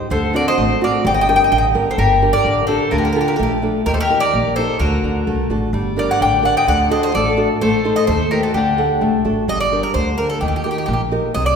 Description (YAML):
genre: greek folk, Greek bouzouki band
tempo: 128 BPM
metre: 2/4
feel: straight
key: G harmonic minor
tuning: A4 = 438 Hz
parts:
  - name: nylon-string guitar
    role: accompaniment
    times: 0.0-11.6 s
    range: C3 to F#5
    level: -20 LUFS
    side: equal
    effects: none
  - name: Greek bouzouki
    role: melody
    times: 0.1-11.6 s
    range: G4 to G5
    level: -19 LUFS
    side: left 1 dB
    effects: none
  - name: mandolin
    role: second line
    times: 0.1-9.2 s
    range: D4 to Eb5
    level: -21 LUFS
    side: left 3 dB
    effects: none
  - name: upright bass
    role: bass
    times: 0.1-11.6 s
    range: G1 to Eb2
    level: -21 LUFS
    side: right 1 dB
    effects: none
room: wet scoring stage reverb, RT60 1.5 s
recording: recorded in a church or concert hall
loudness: -14 LUFS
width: side -6 dB against mid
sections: 0.0-2.0 A section; 2.0-9.5 B section; 9.5-11.6 C section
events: none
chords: 0.1 D7; 1.0 Gm; 2.9 Dm; 3.9 Eb; 4.8 D; 5.7 Gm; 6.7 D; 7.6 Adim; 8.5 D; 9.5 Gm; 10.4 Eb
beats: | 0.10 0.57 | 1.04 1.51 | 1.98 2.45 | 2.92 3.39 | 3.86 4.33 | 4.80 5.27 | 5.74 6.21 | 6.67 7.14 | 7.61 8.08 | 8.55 9.02 | 9.48 9.95 | 10.42 10.88 | 11.35